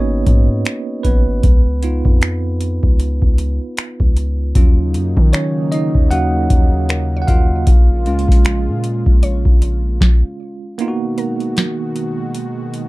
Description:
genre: contemporary R&B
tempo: 77 BPM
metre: 4/4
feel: swing 58% on 16ths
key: G# dorian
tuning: A4 = 441 Hz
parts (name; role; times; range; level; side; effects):
- bell-like tine electric piano; accompaniment; 0.0-12.9 s; F#3 to F#5; -21 LUFS; right 2 dB; fast stereo tremolo
- long sustained 808-style bass; bass; 0.0-10.0 s; G#1 to D#3; -18 LUFS; equal; none
- booming analog drum machine; drums; 0.3-12.9 s; finger snaps, hi-hat, kick drum, snare drum; -12 LUFS; equal; none
- warm analog pad; sustained chords; 4.5-12.9 s; B2 to F#4; -26 LUFS; left 1 dB; chorus
- mallet-like synth pluck; texture; 5.3-12.9 s; A#4 to C#5; -34 LUFS; left 3 dB; chorus, tape echo
room: little or no reverb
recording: dark, warm production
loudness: -13 LUFS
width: side -20 dB against mid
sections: 0.0-10.8 A section; 10.8-12.9 B section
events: tine electric piano solo 0.0-10.8; break 10.8-12.9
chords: 0.0 G#m7; 1.4 C#7; 4.6 D#m7; 7.7 A#m7; 10.8 G#m7

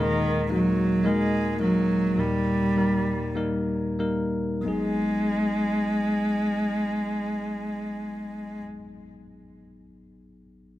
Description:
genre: pop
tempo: 45-57 BPM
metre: 4/4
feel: straight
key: G# minor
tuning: A4 = 440 Hz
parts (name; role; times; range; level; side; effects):
- warm cello; melody; 0.0-8.6 s; D#3 to G#3; -25 LUFS; right 1 dB; none
- bell-like tine electric piano; accompaniment; 0.0-10.8 s; G#1 to A#4; -28 LUFS; left 1 dB; none
room: light reverb, studio reverb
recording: none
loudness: -23 LUFS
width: side -14 dB against mid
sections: 0.0-4.7 A section; 4.7-10.0 B section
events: slowing down 0.0-4.7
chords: 0.0 D#sus4; 2.2 D#; 4.7 G#m7

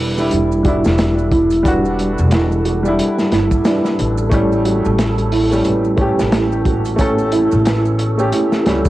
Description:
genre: trip hop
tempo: 90 BPM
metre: 4/4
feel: swing 59% on 16ths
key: E dorian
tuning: A4 = 440 Hz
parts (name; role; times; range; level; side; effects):
- warm upright piano; accompaniment; 0.0-8.9 s; G3 to A4; -18 LUFS; equal; harmonic tremolo, cassette tape, tape echo, plate reverb
- felt-muted upright piano; arpeggios; 0.0-8.9 s; E4 to B4; -19 LUFS; right 2 dB; vintage 12-bit sampler grit, low-pass filter, cassette tape, tape echo, plate reverb
- upright bass; bass; 0.0-8.8 s; E1 to C#2; -19 LUFS; equal; none
- wind-like tuned noise texture; texture; 0.0-8.9 s; A4; -28 LUFS; right 1 dB; built-in reverb, cassette tape, plate reverb
- maracas; percussion; 0.2-8.9 s; none; -41 LUFS; right 10 dB; none
- crunchy breakbeat drum kit; drums; 0.3-8.9 s; hi-hat, kick drum, snare drum; -19 LUFS; equal; cassette tape
room: moderate studio reverb, RT60 0.6 s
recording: home recording on cassette, vinyl crackle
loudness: -13 LUFS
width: side -16 dB against mid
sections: 0.0-8.9 A section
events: filter sweep on felt piano 0.0-8.9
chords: 0.0 Em7; 4.3 A7

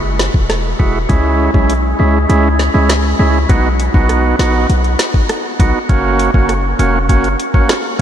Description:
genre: dancehall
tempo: 100 BPM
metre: 4/4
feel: straight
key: B major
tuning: A4 = 440 Hz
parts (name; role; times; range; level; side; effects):
- warm 808-style bass; bass; 0.0-7.4 s; E1 to C#2; -15 LUFS; equal; none
- island pop drum kit; drums; 0.2-7.8 s; hi-hat, kick drum, rim click, snare drum; -16 LUFS; equal; vintage 12-bit sampler grit
- overdriven tonewheel organ; accompaniment; 0.8-8.0 s; G#3 to F#4; -15 LUFS; right 2 dB; none
room: moderate huge ambient reverb, RT60 7.6 s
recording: dreamy mix soaked in reverb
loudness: -11 LUFS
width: side -10 dB against mid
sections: 0.0-3.5 A section; 3.5-8.0 B section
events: kick muted 2.3-3.5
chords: 0.0 Eadd9; 1.1 C#m; 3.5 B; 5.9 F#

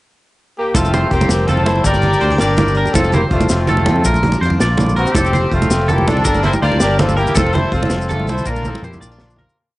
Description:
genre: highlife guitar band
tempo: 109 BPM (dotted quarters)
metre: 12/8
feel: straight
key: F major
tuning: A4 = 440 Hz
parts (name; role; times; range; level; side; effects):
- clear horn section; melody; 0.6-9.4 s; A3 to D5; -19 LUFS; left 1 dB; cassette tape
- fingered electric bass; bass; 0.7-9.4 s; F1 to F2; -18 LUFS; equal; none
- crunchy breakbeat drum kit; drums; 0.7-9.5 s; hi-hat, kick drum, snare drum, toms; -22 LUFS; equal; cassette tape
- congas; percussion; 0.7-9.6 s; none; -19 LUFS; right 2 dB; none
- clear trumpet; second line; 0.8-9.4 s; C4 to Bb4; -27 LUFS; left 2 dB; cassette tape
- picked swing-style acoustic guitar; accompaniment; 0.8-9.8 s; F2 to G4; -26 LUFS; left 3 dB; cassette tape
- twangy electric guitar; arpeggios; 0.8-9.6 s; A4 to D5; -22 LUFS; right 1 dB; lush chorus, cassette tape
- maracas; percussion; 0.8-9.5 s; none; -28 LUFS; left 4 dB; none
room: light reverb, small room ambience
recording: home recording on cassette, nothing above 10.8 kHz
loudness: -12 LUFS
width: side -18 dB against mid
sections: 0.0-0.8 pickup bar; 0.8-9.6 A section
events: fade-out 7.4-9.6; drum fill 8.5-9.6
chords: 0.0 N.C.; 0.8 F; 1.9 Gm; 3.0 F; 4.0 Bb; 5.2 F; 6.3 Gm; 7.4 F; 8.5 Bb

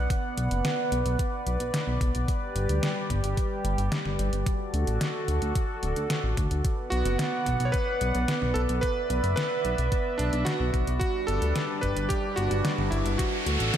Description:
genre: synthwave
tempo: 110 BPM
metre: 4/4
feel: straight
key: B minor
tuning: A4 = 440 Hz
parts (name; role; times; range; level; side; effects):
- chorused pulse-width pad; sustained chords; 0.0-13.8 s; G3 to F#5; -30 LUFS; right 1 dB; vintage 12-bit sampler grit, sidechain pumping
- chorused synth bass; bass; 0.0-13.7 s; D1 to D2; -27 LUFS; equal; none
- detuned 8-bit digital drum machine; drums; 0.1-13.8 s; hi-hat, snare drum; -33 LUFS; left 1 dB; overdrive
- electronic kick drum; drums; 0.1-13.3 s; none; -29 LUFS; equal; overdrive
- bright electric grand piano; melody; 6.9-13.7 s; D4 to C#5; -30 LUFS; right 2 dB; ping-pong delay
- riser; sound effects; 12.1-13.8 s; none; -34 LUFS; right 1 dB; none
room: wet lush hall reverb, RT60 2.5 s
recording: dreamy mix soaked in reverb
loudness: -25 LUFS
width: side -10 dB against mid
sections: 0.0-13.8 A section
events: riser 12.1-13.8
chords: 0.0 Bm; 2.3 G; 4.5 D; 6.6 Bm; 11.0 G; 13.2 D

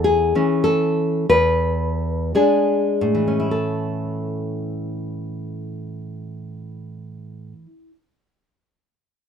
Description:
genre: romantic piece for solo classical guitar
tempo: 49-68 BPM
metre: 4/4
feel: rubato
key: A major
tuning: A4 = 438 Hz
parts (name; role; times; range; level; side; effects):
- nylon-string guitar; solo; 0.0-8.0 s; E2 to B4; -19 LUFS; left 1 dB; none
room: light reverb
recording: minimal, uncompressed stereo recording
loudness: -18 LUFS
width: side -7 dB against mid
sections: 0.0-3.5 A section; 3.5-8.1 B section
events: slowing down 0.0-3.5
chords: 0.0 Amaj7/E; 1.3 E7; 3.5 A

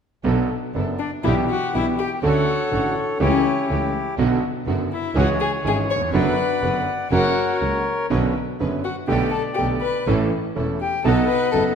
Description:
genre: tango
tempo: 122 BPM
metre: 4/4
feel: rubato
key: B minor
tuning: A4 = 441 Hz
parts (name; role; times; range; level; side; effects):
- bright concert grand piano; accompaniment; 0.2-11.7 s; E1 to A4; -23 LUFS; right 2 dB; none
- clear studio string section; stabs; 0.2-11.7 s; A3 to B4; -31 LUFS; right 3 dB; none
- warm double bass; bass; 0.2-11.7 s; E1 to D2; -25 LUFS; right 2 dB; none
- bandoneon; melody; 1.0-11.8 s; E4 to C#6; -24 LUFS; left 2 dB; none
- warm violin; second line; 1.0-11.6 s; C#4 to C#5; -25 LUFS; left 6 dB; none
room: wet scoring stage reverb, RT60 1.6 s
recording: minimal, uncompressed stereo recording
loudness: -19 LUFS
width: side -7 dB against mid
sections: 0.2-11.8 A section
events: none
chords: 0.2 Bm7; 1.2 G6/B; 2.2 Dmaj7; 3.2 A7/C#; 4.2 Bm; 5.1 C#m; 6.1 Bm/F#; 7.1 F#; 8.1 Bmadd9; 9.1 Gadd9/B; 10.1 A; 11.0 B7

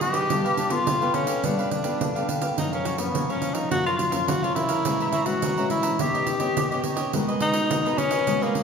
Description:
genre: samba and choro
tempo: 105 BPM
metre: 4/4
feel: straight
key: unclear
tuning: A4 = 439 Hz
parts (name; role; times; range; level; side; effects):
- breathy tenor saxophone; melody; 0.0-8.6 s; Bb3 to G4; -25 LUFS; left 2 dB; none
- cavaquinho; accompaniment; 0.0-8.6 s; D4 to Bb5; -30 LUFS; right 4 dB; none
- nylon-string guitar; accompaniment; 0.0-8.6 s; Gb2 to Bb4; -29 LUFS; left 2 dB; none
- pandeiro; percussion; 0.0-8.6 s; none; -28 LUFS; right 3 dB; none
room: wet recital hall reverb, RT60 1.5 s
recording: recorded in a church or concert hall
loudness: -22 LUFS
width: side -6 dB against mid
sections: 0.0-8.6 A section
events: none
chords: 0.3 G9; 2.6 Gbmaj7; 4.9 Bbm7b5; 6.0 Eb7b13; 7.1 Abm9

